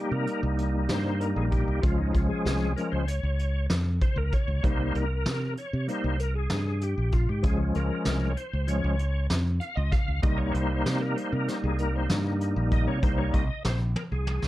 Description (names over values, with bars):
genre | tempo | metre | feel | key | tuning
progressive instrumental, band music in an uneven meter | 193 BPM (eighths) | 9/8 | straight | C phrygian | A4 = 440 Hz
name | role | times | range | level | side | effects
bright tonewheel organ | accompaniment | 0.0-14.5 s | F3 to F5 | -30 LUFS | left 1 dB | chorus vibrato, fast rotary speaker
fingered electric bass | bass | 0.1-14.5 s | Bb1 to C3 | -27 LUFS | equal | none
vintage brush drum kit | drums | 0.3-14.5 s | hi-hat, kick drum, snare drum, toms | -28 LUFS | equal | none
room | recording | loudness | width
little or no reverb | dark, warm production | -24 LUFS | side -16 dB against mid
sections
0.0-14.5 A section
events
tonewheel organ solo 0.0-14.5; drum fill 14.0-14.5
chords
0.0 Cm7; 1.8 Db; 4.6 Cm7; 7.4 Db; 10.2 Cm7